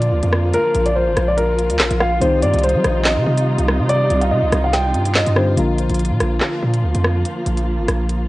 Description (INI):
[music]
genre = hip hop, drill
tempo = 143 BPM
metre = 4/4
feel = half-time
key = unclear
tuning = A4 = 440 Hz
[part]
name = dark grand piano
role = melody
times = 0.0-5.5 s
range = Bb4 to G5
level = -19 LUFS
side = equal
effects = ping-pong delay
[part]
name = soft electric-piano-like synth keys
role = accompaniment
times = 0.0-8.3 s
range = D3 to Bb4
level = -26 LUFS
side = left 2 dB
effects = chorus
[part]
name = dark chamber string section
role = sustained chords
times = 0.0-8.3 s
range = C3 to F4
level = -24 LUFS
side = equal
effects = none
[part]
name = distorted 808-style bass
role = bass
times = 0.0-8.3 s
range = Ab1 to G3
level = -18 LUFS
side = equal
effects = distortion
[part]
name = drill drum kit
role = drums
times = 0.0-8.2 s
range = handclaps, hi-hat, rim click, snare drum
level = -21 LUFS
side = equal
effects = none
[sound]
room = studio reverb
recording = worn, warbling old tape, cassette tape, warbly pitch drift, nothing above 10.6 kHz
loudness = -15 LUFS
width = side -18 dB against mid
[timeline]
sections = 0.0-8.3 A section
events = break 5.6-8.3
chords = 0.0 Bb; 2.2 Cmadd9; 5.6 Bb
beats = 0.12 | 0.54 0.96 1.38 1.80 | 2.22 2.64 3.06 3.48 | 3.90 4.31 4.73 5.15 | 5.57 5.99 6.41 6.83 | 7.25 7.67 8.09